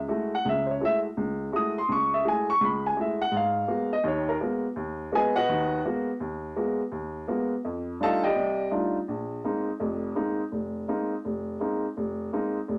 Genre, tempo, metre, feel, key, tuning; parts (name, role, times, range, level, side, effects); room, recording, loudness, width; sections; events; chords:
jazz; 167 BPM; 4/4; swing 65% on 8ths; A4 = 441 Hz
warm upright piano; solo; 0.0-12.8 s; F1 to D#6; -28 LUFS; equal
moderate studio reverb, RT60 0.5 s; -28 LUFS; mono
0.0-9.1 A section; 9.1-12.8 B section
0.0 F#m9; 3.3 G#m9; 7.6 F13; 9.1 Bb9sus4